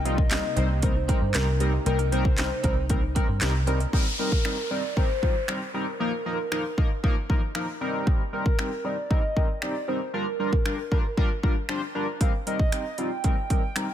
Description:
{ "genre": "dance-pop", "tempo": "116 BPM", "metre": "4/4", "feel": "straight", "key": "C minor", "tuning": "A4 = 440 Hz", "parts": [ { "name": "hollow clarinet-like synth lead", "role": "melody", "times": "0.0-13.9 s", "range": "G4 to G5", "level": "-32 LUFS", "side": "equal", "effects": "chorus, phaser, dub echo" }, { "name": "chorused polysynth", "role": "accompaniment", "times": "0.0-13.9 s", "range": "F3 to C5", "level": "-30 LUFS", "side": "left 1 dB", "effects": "sidechain pumping" }, { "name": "soft supersaw", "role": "sustained chords", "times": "0.0-3.9 s", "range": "C3 to Eb4", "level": "-38 LUFS", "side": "right 1 dB", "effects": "sidechain pumping" }, { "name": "direct-recorded clean electric guitar", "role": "riff", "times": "0.0-4.0 s", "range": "C4 to Bb4", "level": "-38 LUFS", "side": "right 7 dB", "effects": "wide subtle chorus" }, { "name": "vintage muted picked electric bass", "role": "bass", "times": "0.0-3.8 s", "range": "C2 to G2", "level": "-26 LUFS", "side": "equal", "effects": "sidechain pumping" }, { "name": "soft round pluck", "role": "arpeggios", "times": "0.1-3.9 s", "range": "Bb3 to Eb5", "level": "-40 LUFS", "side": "left 6 dB", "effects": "none" }, { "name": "house drum kit", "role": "drums", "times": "0.1-13.9 s", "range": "finger snaps, handclaps, hi-hat, kick drum, snare drum", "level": "-25 LUFS", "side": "equal", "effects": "none" }, { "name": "downlifter", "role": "sound effects", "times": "3.9-8.1 s", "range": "none", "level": "-35 LUFS", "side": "left 1 dB", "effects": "none" } ], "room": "little or no reverb", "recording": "none", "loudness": "-23 LUFS", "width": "side -10 dB against mid", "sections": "0.0-3.9 A section; 3.9-13.9 B section", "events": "none", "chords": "0.0 Cm7; 6.0 Bbsus4; 7.8 Cm7; 10.1 Gm7; 12.2 Cm7" }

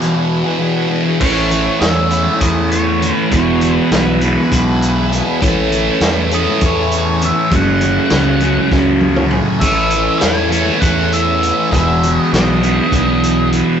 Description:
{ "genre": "psychedelic rock", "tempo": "200 BPM (eighths)", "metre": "7/8", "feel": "straight", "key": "A lydian", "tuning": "A4 = 440 Hz", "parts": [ { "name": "bright tonewheel organ", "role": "sustained chords", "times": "0.0-13.8 s", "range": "A3 to A4", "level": "-25 LUFS", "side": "right 3 dB", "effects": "slow rotary speaker, overdrive, chorus vibrato" }, { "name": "thick fuzz guitar", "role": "riff", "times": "0.0-13.8 s", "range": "E2 to A3", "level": "-15 LUFS", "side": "equal", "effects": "distortion, phaser" }, { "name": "vintage drum kit", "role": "drums", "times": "0.0-13.7 s", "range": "crash cymbal, hi-hat, kick drum, snare drum, toms", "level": "-19 LUFS", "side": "equal", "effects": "none" }, { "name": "octave-fuzz lead guitar", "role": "melody", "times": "1.2-13.5 s", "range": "B4 to G#5", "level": "-20 LUFS", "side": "right 1 dB", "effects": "distortion" }, { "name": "fuzz fingered electric bass", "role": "bass", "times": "1.2-13.6 s", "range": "E1 to E2", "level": "-18 LUFS", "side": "equal", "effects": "overdrive" }, { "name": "congas", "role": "percussion", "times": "1.2-13.7 s", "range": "none", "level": "-28 LUFS", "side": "left 1 dB", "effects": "none" } ], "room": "wet studio reverb, RT60 0.6 s", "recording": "rough rehearsal-room recording, warm saturation, nothing above 8.0 kHz", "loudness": "-12 LUFS", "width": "side -8 dB against mid", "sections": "0.0-1.2 A section; 1.2-13.8 B section", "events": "drum fill 8.7-9.6", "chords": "0.0 Eadd9; 1.2 A; 3.3 E; 5.4 A; 7.5 F#madd9; 9.6 A; 11.7 E" }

